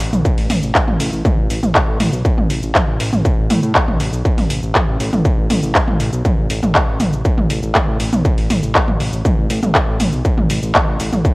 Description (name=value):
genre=melodic techno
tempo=120 BPM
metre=4/4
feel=straight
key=unclear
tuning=A4 = 440 Hz
part: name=fat analog bass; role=bass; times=0.0-11.2 s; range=A1 to A2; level=-20 LUFS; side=equal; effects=sidechain pumping
part: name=techno drum kit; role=drums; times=0.0-11.3 s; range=handclaps, hi-hat, shaker, toms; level=-17 LUFS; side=equal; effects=studio reverb, cassette tape
part: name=electronic kick drum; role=drums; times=0.2-11.3 s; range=none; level=-16 LUFS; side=equal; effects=distortion, studio reverb, cassette tape
room=light reverb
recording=home recording on cassette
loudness=-13 LUFS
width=side -23 dB against mid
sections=0.0-11.3 A section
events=none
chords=none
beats=| 0.25 0.75 1.25 1.75 | 2.25 2.75 3.25 3.75 | 4.25 4.75 5.25 5.75 | 6.25 6.75 7.25 7.75 | 8.25 8.75 9.25 9.75 | 10.25 10.75 11.25